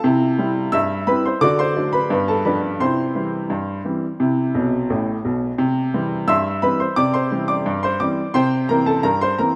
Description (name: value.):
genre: ragtime piano.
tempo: 87 BPM.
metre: 2/4.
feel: straight.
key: C major.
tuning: A4 = 440 Hz.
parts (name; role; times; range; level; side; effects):
clear upright piano; solo; 0.0-9.6 s; A1 to E6; -20 LUFS; equal; none.
room: moderate plate reverb, RT60 2.7 s.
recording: rough home demo mix.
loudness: -20 LUFS.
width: mono.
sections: 0.0-5.6 A section; 5.6-9.6 A section.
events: upright piano fill 4.5-5.6.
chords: 0.0 C; 1.4 D7; 2.1 G7; 2.8 C; 8.3 C7.